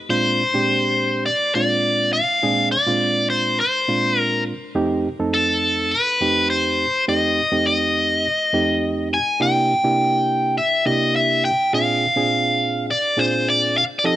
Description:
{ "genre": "blues", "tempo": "103 BPM", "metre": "4/4", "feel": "straight", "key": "unclear", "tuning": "A4 = 439 Hz", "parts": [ { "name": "biting overdriven guitar", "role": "melody", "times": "0.1-14.2 s", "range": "A4 to Ab5", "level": "-18 LUFS", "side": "left 1 dB", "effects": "none" }, { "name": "reed electric piano", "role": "accompaniment", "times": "0.1-14.2 s", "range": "F2 to A4", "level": "-22 LUFS", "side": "right 2 dB", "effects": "none" } ], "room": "light reverb, digital ambience", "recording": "nothing above 10.9 kHz", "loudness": "-17 LUFS", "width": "side -14 dB against mid", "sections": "0.0-14.2 A section", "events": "none", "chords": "0.1 Bb9; 4.8 F9; 9.4 C9; 11.7 Bb9" }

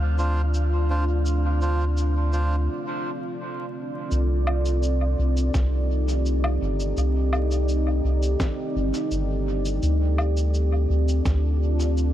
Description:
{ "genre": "ambient dub", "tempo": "84 BPM", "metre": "4/4", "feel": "straight", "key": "C dorian", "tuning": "A4 = 440 Hz", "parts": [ { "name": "deep dark ambient pad", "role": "sustained chords", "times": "0.0-12.1 s", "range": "C4 to D5", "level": "-28 LUFS", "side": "equal", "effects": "chorus, built-in reverb" }, { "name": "soft dub sub bass", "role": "bass", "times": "0.0-12.1 s", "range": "G1 to D2", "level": "-22 LUFS", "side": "equal", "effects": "none" }, { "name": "wind-like tuned noise texture", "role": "texture", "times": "0.0-2.7 s", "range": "F5", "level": "-43 LUFS", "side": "right 7 dB", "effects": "none" }, { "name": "melodica", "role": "stabs", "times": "0.2-2.6 s", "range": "D4 to C5", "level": "-32 LUFS", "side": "right 2 dB", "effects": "dub echo" }, { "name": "electronic cabasa, woodblock and snare drum", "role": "drums", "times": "0.2-12.1 s", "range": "none", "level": "-33 LUFS", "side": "left 1 dB", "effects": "dub echo" }, { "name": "electronic kick drum", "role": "drums", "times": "5.5-11.4 s", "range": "none", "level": "-25 LUFS", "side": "equal", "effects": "none" } ], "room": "little or no reverb", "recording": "vinyl crackle", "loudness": "-21 LUFS", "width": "side -12 dB against mid", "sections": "0.0-4.1 A section; 4.1-12.1 B section", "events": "break 2.7-4.1", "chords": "0.0 Dm7; 4.1 Cm69; 9.8 Dm7" }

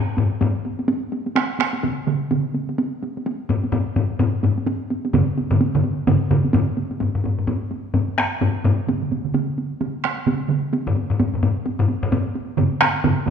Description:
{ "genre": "japanese traditional, taiko drum ensemble", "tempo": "128 BPM", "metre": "4/4", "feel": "swing 60% on 16ths", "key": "none", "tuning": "none", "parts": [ { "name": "taiko ensemble", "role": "percussion", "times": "0.2-13.3 s", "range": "none", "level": "-24 LUFS", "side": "right 2 dB", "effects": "none" }, { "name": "taiko ensemble", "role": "percussion", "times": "0.2-0.5, 3.5-13.3 s", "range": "none", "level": "-21 LUFS", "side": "left 3 dB", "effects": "none" }, { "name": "taiko ensemble", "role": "percussion", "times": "1.4-13.3 s", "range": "none", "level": "-22 LUFS", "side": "right 6 dB", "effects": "none" } ], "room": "wet scoring stage reverb, RT60 1.7 s", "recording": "minimal, uncompressed stereo recording", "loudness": "-19 LUFS", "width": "side -7 dB against mid", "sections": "0.0-7.0 A section; 7.0-13.3 B section", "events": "speeding up 0.0-13.3", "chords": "none" }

